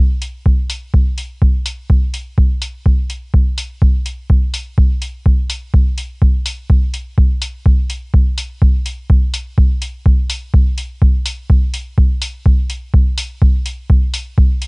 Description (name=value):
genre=techno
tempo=125 BPM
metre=4/4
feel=straight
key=none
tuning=none
part: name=electronic hi-hat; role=drums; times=0.2-14.7 s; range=none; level=-22 LUFS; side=left 1 dB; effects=overdrive
part: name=electronic kick drum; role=drums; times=0.5-14.5 s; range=none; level=-12 LUFS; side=equal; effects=none
room=little or no reverb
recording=dry, gritty hardware recording, nothing above 10.7 kHz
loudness=-13 LUFS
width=side -37 dB against mid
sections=0.0-14.7 A section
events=none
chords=none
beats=0.46 0.94 1.42 | 1.90 2.38 2.86 3.34 | 3.82 4.30 4.78 5.26 | 5.74 6.22 6.70 7.18 | 7.66 8.14 8.62 9.10 | 9.58 10.06 10.54 11.02 | 11.50 11.98 12.46 12.94 | 13.42 13.90 14.38